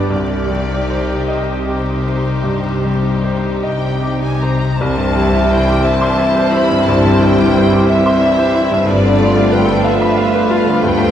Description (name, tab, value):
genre	classical, romantic movement for piano and orchestra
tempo	49-62 BPM (dotted quarters)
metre	12/8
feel	rubato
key	C minor, C major from 4.8 s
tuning	A4 = 440 Hz
part	bright grand piano	melody	0.0-11.1 s	C2 to C6	-16 LUFS	left 1 dB	none
part	clear studio violin section	melody	0.0-11.1 s	C5 to B5	-23 LUFS	left 1 dB	none
part	rich studio violin section	second line	0.0-11.1 s	G3 to C5	-22 LUFS	equal	none
part	rich studio viola section	accompaniment	0.0-11.1 s	G3 to G4	-20 LUFS	right 1 dB	none
part	rich studio cello section	bass	0.1-11.1 s	D2 to C3	-22 LUFS	equal	none
part	rich studio double bass section	bass	0.1-11.1 s	G1 to D2	-22 LUFS	equal	none
part	clear French horn section	sustained chords	4.8-11.1 s	E3 to C4	-20 LUFS	equal	none
room	wet concert hall reverb, RT60 2.5 s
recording	heard from further back in the room, vinyl crackle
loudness	-12 LUFS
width	side -10 dB against mid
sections	0.0-4.8 A section; 4.8-11.1 B section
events	none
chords	0.1 Cm; 4.8 C; 8.9 G9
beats	| 0.10 1.29 2.46 3.63 | 4.79 5.85 6.86 7.87 | 8.87 9.85 10.84